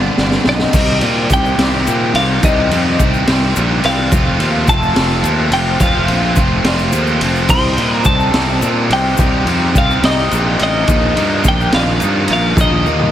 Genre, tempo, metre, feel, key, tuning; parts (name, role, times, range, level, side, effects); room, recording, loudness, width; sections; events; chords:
indie rock; 71 BPM (dotted quarters); 6/8; straight; C dorian; A4 = 440 Hz
twelve-string electric guitar; melody; 0.0-13.1 s; Eb5 to C6; -19 LUFS; left 1 dB; plate reverb, tape echo
cranked stack guitar; riff; 0.0-13.1 s; G2 to G4; -21 LUFS; left 6 dB; overdrive
high-gain distorted guitar; riff; 0.0-13.1 s; G2 to G4; -20 LUFS; right 11 dB; distortion, analog chorus
fuzz fingered electric bass; bass; 0.0-13.1 s; F1 to Bb2; -17 LUFS; equal; overdrive
raw garage drum kit; drums; 0.2-13.1 s; crash cymbal, kick drum, ride cymbal, snare drum, toms; -16 LUFS; equal
brilliant trumpet; second line; 0.5-13.1 s; Eb4 to C5; -28 LUFS; left 8 dB; plate reverb
phased analog pad; sustained chords; 0.7-13.1 s; Eb4 to Eb6; -28 LUFS; equal
tube shaker; percussion; 0.7-12.9 s; -29 LUFS; left 18 dB
light reverb; -11 LUFS; side -11 dB against mid
0.7-13.1 A section
drum fill 0.0-0.7, 12.6-13.1
0.0 G7; 0.7 Cmadd9; 4.1 F; 7.5 Cmadd9; 10.9 Bbsus4